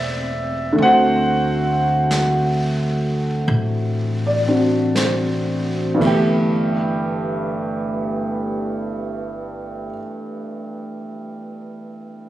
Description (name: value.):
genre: jazz ballad.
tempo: 38-47 BPM.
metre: 4/4.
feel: swing 69% on 8ths.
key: G major.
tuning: A4 = 441 Hz.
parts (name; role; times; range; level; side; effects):
warm baby grand piano; accompaniment; 0.0-12.3 s; G2 to G5; -20 LUFS; right 1 dB; none.
upright bass; bass; 0.0-9.9 s; E1 to D2; -24 LUFS; left 1 dB; none.
jazz brush drum kit; drums; 0.8-6.2 s; brushed snare drum, hi-hat, kick drum, ride cymbal, snare drum; -29 LUFS; right 1 dB; none.
room: light reverb.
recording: recorded on a phone in the room, studio reverb.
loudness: -17 LUFS.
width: side -14 dB against mid.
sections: 0.0-6.5 A section; 6.5-12.3 B section.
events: slowing down 0.0-6.5.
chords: 0.0 Am7; 0.8 D7; 5.7 G69.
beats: | 0.80 2.12 3.50 4.96 | 6.51 8.10 9.68 11.26.